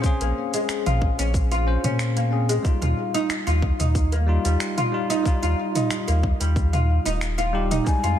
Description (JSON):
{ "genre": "organic downtempo", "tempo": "92 BPM", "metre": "4/4", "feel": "swing 53% on 16ths", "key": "unclear", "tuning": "A4 = 440 Hz", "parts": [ { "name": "bell-like tine electric piano", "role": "accompaniment", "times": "0.0-8.2 s", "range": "G3 to C5", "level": "-29 LUFS", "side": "left 2 dB", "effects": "medium stereo tremolo, sidechain pumping, ping-pong delay, shimmer reverb" }, { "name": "oud", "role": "arpeggios", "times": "0.0-8.2 s", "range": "G3 to F4", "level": "-26 LUFS", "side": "equal", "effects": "ping-pong delay, shimmer reverb" }, { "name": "electronic kick drum", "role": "drums", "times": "0.0-8.0 s", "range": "none", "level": "-22 LUFS", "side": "equal", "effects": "none" }, { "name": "organic electronic drum kit", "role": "drums", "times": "0.0-8.2 s", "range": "finger snaps, hi-hat, shaker, toms", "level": "-29 LUFS", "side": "right 1 dB", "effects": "none" }, { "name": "warm sub bass", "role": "bass", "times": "0.2-8.2 s", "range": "Eb1 to Bb2", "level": "-22 LUFS", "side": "equal", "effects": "sidechain pumping" }, { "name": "breathy mellow bansuri", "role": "melody", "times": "7.9-8.2 s", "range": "Ab5", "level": "-25 LUFS", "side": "left 6 dB", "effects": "none" } ], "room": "light reverb", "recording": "none", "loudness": "-20 LUFS", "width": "side -10 dB against mid", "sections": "0.0-8.2 A section", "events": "none", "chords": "0.0 Bbm7; 2.6 Ebadd9" }